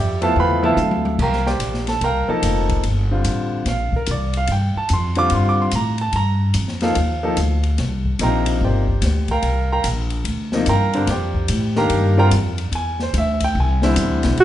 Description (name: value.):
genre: modal jazz.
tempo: 146 BPM.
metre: 4/4.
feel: swing 65% on 8ths.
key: C dorian.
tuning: A4 = 440 Hz.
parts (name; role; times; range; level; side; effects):
clear concert grand piano; accompaniment; 0.0-14.4 s; C3 to D6; -20 LUFS; equal; none.
upright bass; bass; 0.0-14.4 s; F1 to A2; -20 LUFS; equal; none.
open jazz drum kit; drums; 0.2-14.4 s; crash cymbal, hi-hat, kick drum, ride cymbal, snare drum, toms; -27 LUFS; left 2 dB; none.
mellow alto saxophone; melody; 14.4 s; F#4; -6 LUFS; right 2 dB; none.
room: moderate recital hall reverb, RT60 1.4 s.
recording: recorded in a church or concert hall, nothing above 10.8 kHz.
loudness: -17 LUFS.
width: side -12 dB against mid.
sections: 0.0-1.2 A section; 1.2-14.4 A section.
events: drum fill 0.4-1.2.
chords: 0.0 G13; 1.2 C9sus4; 12.7 E7alt.